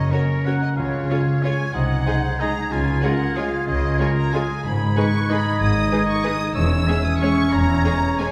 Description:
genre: classical, orchestral ballroom waltz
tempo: 186 BPM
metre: 3/4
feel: uneven beats, rubato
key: unclear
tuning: A4 = 440 Hz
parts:
  - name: rich symphonic violin section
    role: melody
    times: 0.0-8.3 s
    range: C#5 to E6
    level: -32 LUFS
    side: equal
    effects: none
  - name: clear clarinet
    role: second line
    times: 0.0-8.3 s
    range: C#4 to E#4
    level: -30 LUFS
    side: equal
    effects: none
  - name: clear oboe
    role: second line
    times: 0.0-8.3 s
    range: E#4 to F#5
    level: -31 LUFS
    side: equal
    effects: none
  - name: large flute ensemble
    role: second line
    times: 0.0-8.3 s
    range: A#5 to G#6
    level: -33 LUFS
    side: equal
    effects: none
  - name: concert harp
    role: arpeggios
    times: 0.0-8.3 s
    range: E2 to A#4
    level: -29 LUFS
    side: equal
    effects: none
  - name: rich symphonic cello section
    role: bass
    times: 0.0-7.8 s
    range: E2 to C#3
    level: -28 LUFS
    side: equal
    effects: none
  - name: rich symphonic double bass section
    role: bass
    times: 0.0-7.8 s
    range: E1 to C#2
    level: -27 LUFS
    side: equal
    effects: none
  - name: rich symphonic violin section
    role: second line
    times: 0.1-8.3 s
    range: G#4 to D#5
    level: -35 LUFS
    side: equal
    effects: none
  - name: clear symphonic viola section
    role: accompaniment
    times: 0.1-8.3 s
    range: G#3 to F#4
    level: -32 LUFS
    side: equal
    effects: none
  - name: mellow French horn section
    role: sustained chords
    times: 0.1-8.3 s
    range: G#3 to E#4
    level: -35 LUFS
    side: equal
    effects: none
room: wet concert hall reverb, RT60 1.9 s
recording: recorded in a church or concert hall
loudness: -20 LUFS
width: mono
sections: 0.0-8.3 A section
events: none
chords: 0.0 F#; 0.8 C#; 1.7 G#7/B#; 2.7 C#; 4.6 G#m; 6.6 C#m/E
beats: 0.11 0.45 | 0.77 1.08 1.42 | 1.74 2.06 2.40 | 2.71 3.03 3.36 | 3.67 3.99 4.33 | 4.64 4.96 5.29 | 5.60 5.92 6.24 | 6.56 6.88 7.21 | 7.53 7.85 8.19

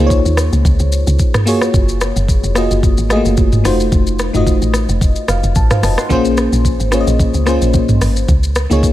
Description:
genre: amapiano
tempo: 110 BPM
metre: 4/4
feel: swing 55% on 16ths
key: Bb minor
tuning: A4 = 440 Hz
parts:
  - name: bell-like FM electric piano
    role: accompaniment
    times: 0.0-8.9 s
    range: A3 to C6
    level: -16 LUFS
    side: left 2 dB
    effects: chorus
  - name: deep log drum bass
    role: bass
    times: 0.0-8.9 s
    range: F1 to Eb2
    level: -15 LUFS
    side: equal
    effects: none
  - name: smooth R&B drum kit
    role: drums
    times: 0.1-8.9 s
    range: hi-hat, kick drum, rim click, shaker, toms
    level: -16 LUFS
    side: equal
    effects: none
room: little or no reverb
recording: none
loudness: -11 LUFS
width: side -14 dB against mid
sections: 0.0-8.9 A section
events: FM electric piano fill 5.0-6.1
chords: 0.0 Db69; 1.5 Gbmaj9; 3.6 F7b9; 6.1 Bbm9; 8.3 Db69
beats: 0.10 0.65 1.19 | 1.74 2.29 2.83 3.38 | 3.92 4.47 5.01 5.56 | 6.10 6.65 7.19 7.74 | 8.29 8.83

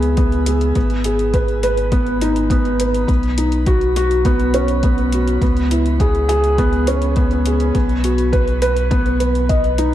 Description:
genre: piano and strings electronica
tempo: 103 BPM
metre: 4/4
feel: straight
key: unclear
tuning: A4 = 440 Hz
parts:
  - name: felt-muted upright piano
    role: riff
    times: 0.0-9.9 s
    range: B3 to D#5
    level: -17 LUFS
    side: equal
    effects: tape echo, shimmer reverb
  - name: warm sub bass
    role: bass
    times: 0.0-9.9 s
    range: G#1 to C#2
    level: -20 LUFS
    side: equal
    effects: sidechain pumping
  - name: electronic hi-hat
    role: drums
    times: 0.0-9.9 s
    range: none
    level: -32 LUFS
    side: left 2 dB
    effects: none
  - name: electronic kick drum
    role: drums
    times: 0.2-9.6 s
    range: none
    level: -18 LUFS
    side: equal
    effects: none
room: moderate echo chamber reverb, RT60 1.4 s, digital ambience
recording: dark, warm production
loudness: -14 LUFS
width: side -12 dB against mid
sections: 0.0-9.9 A section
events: none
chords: 0.0 C#m7; 0.8 G#m; 3.1 Badd9; 5.4 C#m7; 7.7 B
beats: 0.17 | 0.76 1.34 1.92 2.50 | 3.09 3.67 4.25 4.83 | 5.42 6.00 6.58 7.16 | 7.75 8.33 8.91 9.49

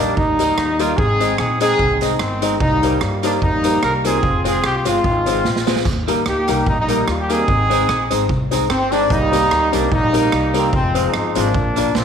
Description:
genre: ska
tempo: 148 BPM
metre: 4/4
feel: swing 55% on 8ths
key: unclear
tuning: A4 = 439 Hz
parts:
  - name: warm horn section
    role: melody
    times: 0.0-12.0 s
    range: Eb3 to Bb4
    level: -18 LUFS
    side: equal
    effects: slapback echo
  - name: clean electric guitar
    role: accompaniment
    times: 0.0-11.9 s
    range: G3 to F4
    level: -25 LUFS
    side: right 10 dB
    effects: none
  - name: dark upright piano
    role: stabs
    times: 0.0-11.9 s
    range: Bb3 to Eb5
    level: -23 LUFS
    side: left 9 dB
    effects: none
  - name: upright bass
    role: bass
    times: 0.0-12.0 s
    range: F1 to G2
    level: -23 LUFS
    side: left 1 dB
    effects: none
  - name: street-band drum kit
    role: drums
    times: 0.2-12.0 s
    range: hi-hat, kick drum, rim click, snare drum, splash cymbal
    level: -23 LUFS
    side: right 2 dB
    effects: none
  - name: tambourine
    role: percussion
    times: 0.4-11.9 s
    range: none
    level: -36 LUFS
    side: left 12 dB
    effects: none
room: moderate echo chamber reverb, RT60 1.4 s, small room ambience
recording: 1960s-style stereo with parts hard left and right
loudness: -15 LUFS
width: side -7 dB against mid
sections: 0.0-12.0 A section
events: drum fill 5.4-5.9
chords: 0.0 Eb; 1.0 Ab; 2.6 Cm7; 4.2 Fm; 5.9 Eb; 7.5 Ab; 9.1 Cm7; 10.7 Fm; 11.5 Bb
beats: 0.17 0.58 | 0.98 1.39 1.79 2.20 | 2.61 3.01 3.42 3.83 | 4.23 4.64 5.04 5.45 | 5.86 6.26 6.67 7.07 | 7.48 7.89 8.29 8.70 | 9.10 9.51 9.92 10.32 | 10.73 11.13 11.54 11.95

